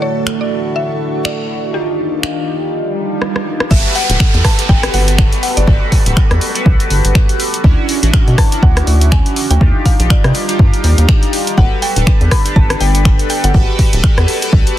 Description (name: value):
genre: deep house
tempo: 122 BPM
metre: 4/4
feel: swing 58% on 16ths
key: G lydian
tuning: A4 = 445 Hz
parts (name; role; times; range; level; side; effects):
- mallet-like synth pluck; melody; 0.0-14.1 s; G4 to B5; -23 LUFS; left 1 dB; chorus, dub echo
- airy breathy pad; sustained chords; 0.0-14.8 s; D3 to D6; -29 LUFS; equal; chorus, sidechain pumping
- chorused polysynth; stabs; 0.0-14.8 s; A3 to B4; -19 LUFS; equal; phaser, sidechain pumping
- string machine, violins; texture; 0.0-2.7 s; A4 to A5; -35 LUFS; right 2 dB; ensemble chorus, sidechain pumping
- warbly tape-like pad; texture; 0.0-14.8 s; D3 to C#6; -30 LUFS; equal; chorus, built-in reverb, sidechain pumping
- punchy analog drum machine; drums; 0.3-14.8 s; crash cymbal, finger snaps, hi-hat, rim click; -20 LUFS; equal; soft clipping on snare
- swell and downlifter; sound effects; 2.9-7.6 s; none; -22 LUFS; right 3 dB; none
- rubbery square bass; bass; 3.7-14.6 s; D1 to C3; -13 LUFS; equal; none
- electronic kick drum; drums; 3.7-14.6 s; none; -11 LUFS; equal; none
room: little or no reverb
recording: dense, heavily limited modern master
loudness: -10 LUFS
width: side -13 dB against mid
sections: 0.0-3.7 A section; 3.7-14.8 B section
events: swell 2.9-3.7; drum fill 3.2-3.7; drop 3.7-14.8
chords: 0.0 Dmaj9; 1.7 Ebmaj9; 3.7 Gmaj9; 7.6 Dmaj9; 9.6 Ebmaj9; 11.6 Gmaj9